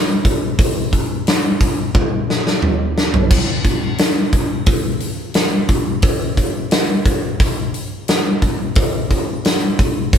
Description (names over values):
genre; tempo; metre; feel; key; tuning
rock; 88 BPM; 4/4; straight; none; none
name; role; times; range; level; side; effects
big rock drum kit; drums; 0.2-10.2 s; crash cymbal, hi-hat, kick drum, snare drum, toms; -15 LUFS; equal; none
room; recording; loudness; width
light reverb; band playing live in one room; -15 LUFS; side -8 dB against mid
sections
0.0-3.3 A section; 3.3-10.2 B section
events
drum fill 1.9-3.3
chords
none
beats
| 0.58 1.27 1.95 2.63 | 3.31 3.99 4.67 5.36 | 6.04 6.72 7.40 8.09 | 8.77 9.45 10.13